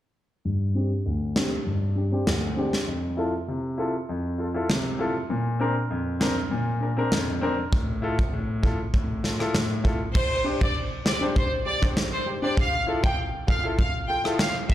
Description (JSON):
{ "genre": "dancehall", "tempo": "99 BPM", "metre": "4/4", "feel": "straight", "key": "unclear", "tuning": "A4 = 442 Hz", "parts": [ { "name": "clear concert grand piano", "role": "accompaniment", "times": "0.5-14.7 s", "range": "D2 to C5", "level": "-26 LUFS", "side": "left 1 dB", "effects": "sidechain pumping, low-pass filter" }, { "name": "big rock drum kit", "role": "drums", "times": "1.4-14.7 s", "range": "crash cymbal, kick drum, rim click, snare drum", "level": "-26 LUFS", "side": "equal", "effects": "none" }, { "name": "bright studio violin section", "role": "melody", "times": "10.2-14.7 s", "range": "C5 to G5", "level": "-27 LUFS", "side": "equal", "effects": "digital delay" } ], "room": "light reverb, studio reverb", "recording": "played on a big sound system in a bare room, large studio reverb", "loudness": "-23 LUFS", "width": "side -13 dB against mid", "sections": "0.5-10.2 A section; 10.2-14.7 B section", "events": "filter sweep on grand piano 0.5-10.2", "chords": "0.5 Gsus4; 2.9 Fmaj7; 5.3 Bbadd9; 7.7 Fmaj7/A; 10.2 Gsus4; 12.6 Fmaj7" }